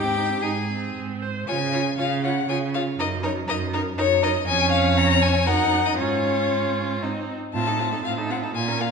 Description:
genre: quick classical-period movement for string quartet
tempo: 118 BPM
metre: 3/4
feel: rubato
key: Db major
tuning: A4 = 438 Hz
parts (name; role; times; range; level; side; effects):
- rich violin; melody; 0.0-8.9 s; Bb4 to Bb5; -24 LUFS; left 6 dB; none
- rich violin; second line; 0.0-8.9 s; Eb4 to Db5; -28 LUFS; left 1 dB; none
- warm viola; accompaniment; 0.0-8.9 s; Bb3 to C5; -28 LUFS; right 4 dB; none
- rich cello; bass; 0.0-8.9 s; F2 to Db3; -26 LUFS; right 4 dB; none
room: wet recital hall reverb, RT60 1.5 s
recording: recorded in a church or concert hall, nothing above 10.9 kHz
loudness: -20 LUFS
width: side -5 dB against mid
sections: 0.0-1.5 A section; 1.5-8.9 B section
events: none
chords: 0.0 Ab; 1.5 Db; 3.0 Ebm/Gb; 4.5 Db/F; 5.5 Ebm/Gb; 6.0 Db/Ab; 7.0 Ab (rootless); 7.5 F7/A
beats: 0.43 0.95 | 1.48 1.99 2.49 | 3.00 3.49 3.98 | 4.47 4.97 5.47 | 5.99 6.51 7.03 | 7.55 8.05 8.56

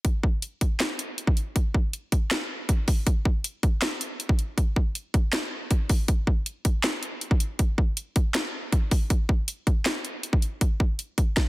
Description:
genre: hip hop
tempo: 159 BPM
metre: 4/4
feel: half-time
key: none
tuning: none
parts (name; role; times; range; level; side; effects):
- trap drum kit; drums; 0.0-11.5 s; handclaps, hi-hat, kick drum, snare drum; -23 LUFS; equal; overdrive
room: little or no reverb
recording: dense, heavily limited modern master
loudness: -23 LUFS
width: side -19 dB against mid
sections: 0.0-11.5 A section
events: none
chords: none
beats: | 0.05 0.42 0.80 1.18 | 1.56 1.93 2.31 2.69 | 3.06 3.44 3.82 4.20 | 4.58 4.95 5.33 5.71 | 6.08 6.46 6.84 7.22 | 7.59 7.97 8.35 8.73 | 9.10 9.48 9.86 10.23 | 10.61 10.99 11.37

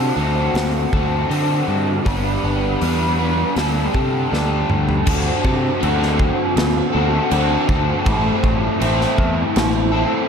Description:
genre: rock, shoegaze and dream pop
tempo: 80 BPM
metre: 4/4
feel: straight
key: D mixolydian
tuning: A4 = 440 Hz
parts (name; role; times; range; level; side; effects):
- crunchy overdriven guitar; riff; 0.0-10.3 s; A2 to B4; -18 LUFS; equal; analog chorus
- growling picked electric bass; bass; 0.0-10.0 s; G1 to D3; -21 LUFS; equal; overdrive
- big rock drum kit; drums; 0.6-9.7 s; crash cymbal, hi-hat, kick drum, snare drum, toms; -23 LUFS; equal; none
room: moderate lush hall reverb, RT60 2.8 s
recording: dreamy mix soaked in reverb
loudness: -16 LUFS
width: side -6 dB against mid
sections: 0.0-5.1 A section; 5.1-10.3 B section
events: drum fill 4.3-5.1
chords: 0.0 D7; 2.1 G; 3.6 Dsus4; 5.1 D7; 8.1 Am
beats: 0.55 1.30 | 2.06 2.81 3.56 4.32 | 5.07 5.82 6.57 7.31 | 8.06 8.81 9.55

